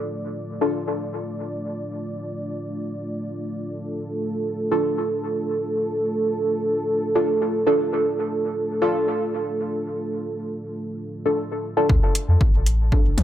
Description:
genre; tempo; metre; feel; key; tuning
dub techno; 117 BPM; 4/4; straight; D minor; A4 = 439 Hz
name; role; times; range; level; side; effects
dark analog pad; sustained chords; 0.0-11.9 s; A3 to D5; -25 LUFS; right 1 dB; chorus, sidechain pumping
deep mellow chord stab; stabs; 0.6-0.9, 4.7-13.2 s; D4 to A4; -24 LUFS; equal; chorus, phaser, sidechain pumping, dub echo
soft dub sub bass; bass; 11.9-13.2 s; A1 to F2; -19 LUFS; equal; sidechain pumping
electronic kick drum; drums; 11.9-13.0 s; none; -19 LUFS; equal; none
electronic hi-hat; drums; 12.2-13.2 s; none; -25 LUFS; equal; none
electronic toms; percussion; 13.2 s; none; -20 LUFS; left 3 dB; sidechain pumping on toms
room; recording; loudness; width
wet spring reverb, RT60 2.1 s; echo-heavy mix; -21 LUFS; side -12 dB against mid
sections
0.0-11.9 A section; 11.9-13.2 B section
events
none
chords
0.0 Dm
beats
0.10 0.61 1.13 | 1.64 2.15 2.66 3.18 | 3.69 4.20 4.71 5.23 | 5.74 6.25 6.77 7.28 | 7.79 8.30 8.82 9.33 | 9.84 10.36 10.87 11.38 | 11.89 12.41 12.92

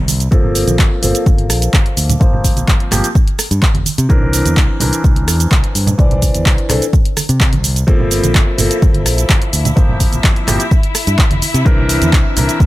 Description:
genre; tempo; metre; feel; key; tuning
filtered disco house; 127 BPM; 4/4; straight; G dorian; A4 = 440 Hz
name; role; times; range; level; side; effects
modern bright fingered electric bass; bass; 0.0-12.7 s; F1 to C3; -17 LUFS; equal; sidechain pumping, low-pass filter
punchy analog drum machine; drums; 0.1-12.7 s; handclaps, hi-hat, rim click, shaker; -18 LUFS; right 1 dB; sidechain pumping on hats, sidechain pumping on perc
tube shaker and congas; percussion; 0.1-12.7 s; none; -22 LUFS; right 3 dB; sidechain pumping on perc, low-pass filter on perc
bright baby grand piano; accompaniment; 0.3-12.7 s; E3 to D5; -19 LUFS; equal; phaser, sidechain pumping, low-pass filter
electronic kick drum; drums; 0.3-12.7 s; none; -12 LUFS; equal; none
rich studio string section; sustained chords; 7.9-12.7 s; E4 to E5; -23 LUFS; left 3 dB; vintage 12-bit sampler grit, sidechain pumping, low-pass filter
room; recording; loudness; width
little or no reverb; none; -11 LUFS; side -17 dB against mid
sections
0.0-12.7 A section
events
filter sweep 0.0-12.7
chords
0.3 Gm11; 3.9 C9; 7.9 Gm11; 11.4 C9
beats
| 0.32 0.79 1.26 1.74 | 2.21 2.68 3.15 3.62 | 4.10 4.57 5.04 5.51 | 5.99 6.46 6.93 7.41 | 7.88 8.35 8.82 9.29 | 9.77 10.24 10.71 11.18 | 11.66 12.13 12.60

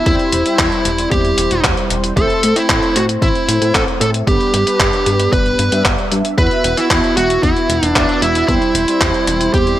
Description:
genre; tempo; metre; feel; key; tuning
italo disco; 114 BPM; 4/4; straight; unclear; A4 = 440 Hz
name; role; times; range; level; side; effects
fuzz lead guitar; melody; 0.0-9.8 s; D4 to B4; -16 LUFS; equal; distortion, vintage 12-bit sampler grit, tape echo
mellow synth brass; stabs; 0.0-9.8 s; G3 to E5; -20 LUFS; right 1 dB; chorus
chorused synth bass; bass; 0.1-9.8 s; E1 to A2; -19 LUFS; equal; none
clean 12-bit digital drum machine; drums; 0.1-9.8 s; handclaps, hi-hat; -18 LUFS; left 1 dB; gated reverb
electronic kick drum; drums; 0.1-9.6 s; none; -20 LUFS; equal; none
room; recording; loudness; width
light reverb, digital ambience; none; -12 LUFS; side -13 dB against mid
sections
0.0-9.8 A section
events
none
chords
0.1 C/E; 2.2 Am; 4.3 G; 6.4 Esus2; 8.5 C/E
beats
| 0.06 0.59 1.12 1.64 | 2.17 2.69 3.22 3.75 | 4.27 4.80 5.33 5.85 | 6.38 6.91 7.43 7.96 | 8.48 9.01 9.54

